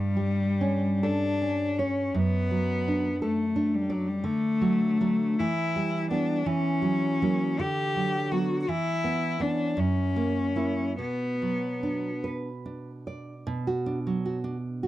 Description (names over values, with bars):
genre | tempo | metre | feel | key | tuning
romantic duo for cello and classical guitar | 46-59 BPM (dotted quarters) | 6/8 | rubato | D major, B minor from 4.2 s | A4 = 441 Hz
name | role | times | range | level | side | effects
clear cello | melody | 0.0-12.2 s | F#3 to G4 | -27 LUFS | left 3 dB | none
nylon-string guitar | accompaniment | 0.0-14.9 s | F#2 to D5 | -28 LUFS | right 2 dB | none
room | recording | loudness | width
moderate booth ambience, RT60 0.2 s | dry, close 1970s-style studio recording | -25 LUFS | side -14 dB against mid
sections
0.0-13.5 A section; 13.5-14.9 B section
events
none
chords
0.0 A7/G; 2.1 D/F#; 4.2 D; 5.4 Em; 6.5 F#7/E; 7.6 Bm/D; 8.7 Bmadd11/E; 9.8 F#7; 11.0 Bm